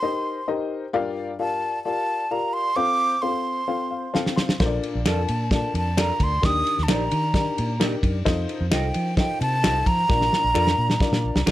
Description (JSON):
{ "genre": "uptempo 1960s-style soul", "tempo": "131 BPM", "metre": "4/4", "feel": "straight", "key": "Bb major", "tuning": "A4 = 440 Hz", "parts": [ { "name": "breathy hollow jazz flute", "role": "melody", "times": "0.0-11.5 s", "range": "G5 to Eb6", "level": "-24 LUFS", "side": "right 1 dB", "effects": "slapback echo" }, { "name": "dark upright piano", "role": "accompaniment", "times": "0.0-11.5 s", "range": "G2 to C6", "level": "-27 LUFS", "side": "left 4 dB", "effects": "none" }, { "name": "warm soul drum kit", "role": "drums", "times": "4.1-11.5 s", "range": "kick drum, ride cymbal, snare drum", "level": "-24 LUFS", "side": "equal", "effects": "none" }, { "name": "vintage muted fingered electric bass", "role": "bass", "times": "4.6-11.5 s", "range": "Bb1 to F3", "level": "-25 LUFS", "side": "equal", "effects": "none" }, { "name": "electric guitar through a small old amp", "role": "stabs", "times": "5.1-11.5 s", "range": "Eb4 to Eb5", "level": "-30 LUFS", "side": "right 7 dB", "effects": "none" }, { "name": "finger snaps", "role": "percussion", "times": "5.1-11.5 s", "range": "none", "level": "-30 LUFS", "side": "left 7 dB", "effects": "none" } ], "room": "light reverb", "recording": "none", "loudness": "-20 LUFS", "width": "side -14 dB against mid", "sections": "0.0-11.5 A section", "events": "upright piano fill 3.7-4.6; drum fill 4.1-4.6, 10.1-11.5", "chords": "0.0 Cm7; 0.9 Gm7; 2.8 F; 4.6 Bbmaj7; 6.4 Ebmaj7; 8.3 F7; 10.1 Bb", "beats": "0.02 0.47 | 0.94 1.39 1.85 2.31 | 2.77 3.23 3.69 4.15 | 4.60 5.06 5.52 5.98 | 6.44 6.89 7.35 7.81 | 8.27 8.72 9.18 9.64 | 10.10 10.55 11.01 11.47" }